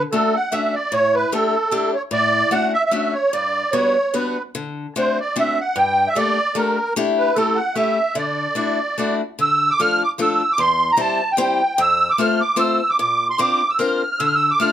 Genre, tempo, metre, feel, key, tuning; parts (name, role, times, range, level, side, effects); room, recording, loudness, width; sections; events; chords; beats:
musette waltz; 150 BPM; 3/4; swing 54% on 8ths; D major, D minor from 9.4 s; A4 = 440 Hz
musette accordion; melody; 0.0-14.7 s; A4 to F6; -17 LUFS; right 2 dB
picked acoustic archtop guitar; accompaniment; 0.0-14.7 s; E2 to D5; -22 LUFS; left 4 dB
moderate studio reverb, RT60 0.6 s; -16 LUFS; side -10 dB against mid
0.0-9.4 A section; 9.4-14.7 B section
0.0 Dmaj7; 0.9 A7sus4; 2.1 Dmaj7/A; 3.3 Gmaj7; 4.5 D7; 5.8 Gmadd9; 7.0 A7sus4; 7.4 A7; 8.2 Dadd9; 9.4 Dm; 10.6 C/E; 11.8 F; 13.0 Bbadd9; 14.2 Dm
0.13 0.53 | 0.93 1.33 1.73 | 2.13 2.52 2.92 | 3.32 3.73 4.14 | 4.54 4.95 5.36 | 5.76 6.17 6.57 | 6.96 7.36 7.76 | 8.16 8.57 8.98 | 9.39 9.80 10.20 | 10.60 11.00 11.40 | 11.79 12.19 12.59 | 12.99 13.39 13.79 | 14.20 14.61